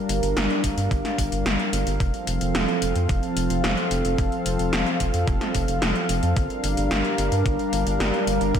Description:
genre	synthwave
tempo	110 BPM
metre	4/4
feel	straight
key	G minor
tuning	A4 = 440 Hz
part	warm analog pad	sustained chords	0.0-8.6 s	F3 to F5	-24 LUFS	equal	chorus, sidechain pumping, shimmer reverb
part	round analog bass	bass	0.1-8.6 s	F1 to G2	-26 LUFS	equal	none
part	80s electronic pad drums	drums	0.1-8.6 s	hi-hat, snare drum	-27 LUFS	equal	none
part	electronic kick drum	drums	0.6-8.6 s	none	-26 LUFS	equal	overdrive
room	moderate lush hall reverb, RT60 2.1 s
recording	dreamy mix soaked in reverb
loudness	-21 LUFS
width	side -8 dB against mid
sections	0.0-8.6 A section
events	none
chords	0.0 Gm7; 2.0 F; 6.4 Gm7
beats	0.36 0.91 1.46 | 2.00 2.55 3.09 3.64 | 4.18 4.73 5.27 5.82 | 6.37 6.91 7.46 8.00 | 8.55

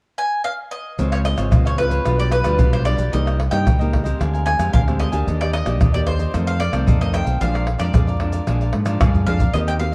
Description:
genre	samba and choro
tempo	112 BPM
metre	4/4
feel	straight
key	unclear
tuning	A4 = 440 Hz
part	bowl-back mandolin	melody	0.2-9.9 s	Cb5 to Ab5	-27 LUFS	equal	none
part	cavaquinho	accompaniment	1.0-9.9 s	D4 to Ab5	-33 LUFS	equal	none
part	nylon-string guitar	accompaniment	1.0-9.9 s	F2 to G4	-28 LUFS	equal	none
part	overdriven fingered electric bass	bass	1.0-9.9 s	Ab1 to Ab2	-23 LUFS	equal	none
part	maracas, surdo, pandeiro and tamborim	percussion	1.0-9.9 s	none	-22 LUFS	equal	none
room	light reverb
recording	dark, warm production, vinyl crackle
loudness	-19 LUFS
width	mono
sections	1.0-9.5 A section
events	drum fill 8.9-9.5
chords	0.0 N.C.; 1.0 Dbmaj7; 2.1 G7/B; 3.1 Cm7; 4.2 Bb13/D; 5.3 Ebmaj7; 6.3 F7; 7.4 Bb7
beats	0.46 | 0.99 1.53 2.06 2.60 | 3.13 3.67 4.20 4.74 | 5.27 5.80 6.34 6.87 | 7.41 7.94 8.47 9.01 | 9.54

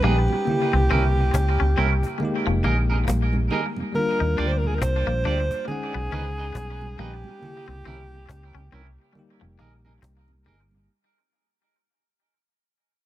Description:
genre	lovers rock reggae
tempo	69 BPM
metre	4/4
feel	swing 59% on 16ths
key	unclear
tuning	A4 = 440 Hz
part	clear alto saxophone	melody	0.0-9.6 s	G4 to C5	-28 LUFS	equal	tape echo
part	bell-like tine electric piano	accompaniment	0.0-10.9 s	Db3 to F#5	-30 LUFS	left 2 dB	fast stereo tremolo
part	mellow tonewheel organ	accompaniment	0.0-10.8 s	Eb2 to G4	-34 LUFS	right 4 dB	slow rotary speaker
part	twangy electric guitar	riff	0.0-10.7 s	F3 to Eb4	-33 LUFS	left 7 dB	tape echo
part	twangy electric guitar	stabs	0.0-10.6 s	Db4 to D5	-31 LUFS	right 4 dB	tape echo
part	vintage muted fingered electric bass	bass	0.0-10.9 s	F1 to Eb2	-23 LUFS	equal	none
part	cajon	drums	0.0-10.8 s	none	-30 LUFS	equal	none
part	congas	percussion	0.0-10.9 s	none	-33 LUFS	right 3 dB	none
room	small room ambience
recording	none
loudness	-20 LUFS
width	side -14 dB against mid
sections	0.0-10.9 A section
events	fade-out 0.0-10.9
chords	0.5 C7b9; 2.2 Fm11; 3.9 Ebmaj9; 5.7 B6; 7.4 C7b9; 9.2 Fm11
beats	| 0.47 1.34 2.21 3.08 | 3.95 4.82 5.68 6.55 | 7.42 8.29 9.16 10.03

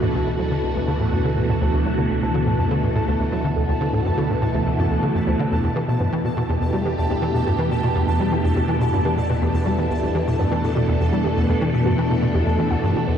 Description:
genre	ambient, sequencer-driven space music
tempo	123 BPM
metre	4/4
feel	straight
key	E minor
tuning	A4 = 440 Hz
part	phased string machine	sustained chords	0.0-13.2 s	B2 to A4	-22 LUFS	equal	ensemble chorus, phaser
part	tight sequencer bass	riff	0.0-13.2 s	D2 to G3	-22 LUFS	equal	ensemble chorus, ping-pong delay
part	warm sub bass	bass	0.0-13.2 s	D2 to E2	-28 LUFS	equal	none
part	pulsing gated texture	texture	0.0-13.2 s	A5	-30 LUFS	right 2 dB	chorus, built-in reverb
part	warbly dusty pluck	arpeggios	0.1-13.2 s	D4 to F#5	-33 LUFS	right 2 dB	none
room	wet huge ambient reverb, RT60 7.5 s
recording	worn, warbling old tape, cassette tape, warbly pitch drift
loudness	-18 LUFS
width	side -8 dB against mid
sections	0.0-13.2 A section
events	none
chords	0.0 D; 5.5 Emadd9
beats	0.15 0.64 1.12 | 1.61 2.10 2.59 3.08 | 3.56 4.05 4.54 5.03 | 5.51 6.00 6.49 6.98 | 7.47 7.95 8.44 8.93 | 9.42 9.90 10.39 10.88 | 11.37 11.86 12.34 12.83

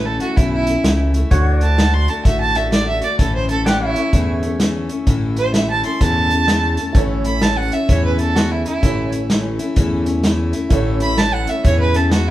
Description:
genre	honky-tonk and classic country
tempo	128 BPM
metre	4/4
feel	swing 63% on 8ths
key	A major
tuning	A4 = 440 Hz
part	clear fiddle	second line	0.0-12.3 s	E4 to C6	-20 LUFS	right 3 dB	none
part	picked steel-string acoustic guitar	accompaniment	0.0-12.3 s	A2 to F#4	-23 LUFS	left 3 dB	none
part	pedal steel guitar	sustained chords	0.0-12.3 s	C#5 to F#5	-27 LUFS	right 1 dB	none
part	smooth synth bass	bass	0.0-12.3 s	A1 to E2	-20 LUFS	equal	none
part	vintage drum kit	drums	0.2-12.3 s	hi-hat, kick drum, snare drum	-18 LUFS	equal	none
part	honky-tonk upright piano	accompaniment	6.9-12.3 s	E4 to C#5	-28 LUFS	right 6 dB	none
room	moderate large studio reverb, RT60 1.0 s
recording	band playing live in one room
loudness	-14 LUFS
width	side -14 dB against mid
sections	0.0-12.3 A section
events	fiddle solo 0.0-12.3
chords	0.0 A; 1.3 D; 3.2 A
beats	0.37 0.84 | 1.31 1.78 2.25 2.72 | 3.19 3.66 4.13 4.60 | 5.07 5.54 6.01 6.48 | 6.95 7.42 7.89 8.36 | 8.83 9.30 9.77 10.24 | 10.71 11.18 11.64 12.11

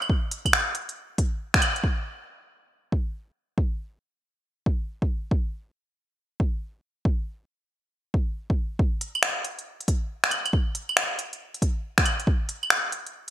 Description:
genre	future garage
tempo	138 BPM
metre	4/4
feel	swing 65% on 16ths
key	none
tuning	none
part	organic electronic drum kit	drums	0.0-1.8, 9.0-13.3 s	claves, finger snaps, hi-hat	-24 LUFS	equal	overdrive, gated reverb
part	electronic kick drum	drums	0.1-12.4 s	none	-24 LUFS	equal	overdrive
room	light reverb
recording	bright 1980s-style digital production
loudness	-24 LUFS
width	side -13 dB against mid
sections	0.0-1.8 A section; 1.8-8.8 B section; 8.8-13.3 A section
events	band accent 1.5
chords	none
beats	| 0.10 0.53 0.97 1.40 | 1.84 2.27 2.71 3.14 | 3.58 4.01 4.45 4.88 | 5.31 5.75 6.18 6.62 | 7.05 7.49 7.92 8.36 | 8.79 9.23 9.66 10.10 | 10.53 10.97 11.40 11.84 | 12.27 12.71 13.14

